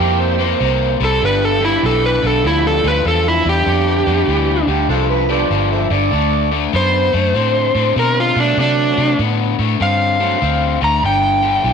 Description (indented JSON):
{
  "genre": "electric blues shuffle",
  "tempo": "98 BPM",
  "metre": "4/4",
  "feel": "swing 65% on 8ths",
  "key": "G mixolydian",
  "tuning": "A4 = 439 Hz",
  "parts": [
    { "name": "overdriven harmonica", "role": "second line", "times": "0.0-0.9, 4.7-6.5 s", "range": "D4 to E5", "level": "-20 LUFS", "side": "right 9 dB", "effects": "none" },
    { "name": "bright tonewheel organ", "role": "accompaniment", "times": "0.0-10.4 s", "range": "F#3 to G4", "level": "-24 LUFS", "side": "right 12 dB", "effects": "slow rotary speaker, overdrive, chorus vibrato" },
    { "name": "raw garage guitar", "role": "riff", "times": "0.0-11.7 s", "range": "G2 to C4", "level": "-19 LUFS", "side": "left 10 dB", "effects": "overdrive" },
    { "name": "vintage muted fingered electric bass", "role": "bass", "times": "0.0-11.7 s", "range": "G1 to C3", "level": "-19 LUFS", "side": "right 1 dB", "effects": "none" },
    { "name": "overdriven slide guitar", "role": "melody", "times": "1.0-11.7 s", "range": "D4 to Bb5", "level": "-16 LUFS", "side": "right 2 dB", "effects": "none" }
  ],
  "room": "moderate echo chamber reverb, RT60 1.4 s",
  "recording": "1960s-style stereo with parts hard left and right",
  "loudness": "-13 LUFS",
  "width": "side -6 dB against mid",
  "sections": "0.0-11.7 A section",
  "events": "none",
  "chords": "0.0 C; 1.2 G; 6.1 D; 11.0 G"
}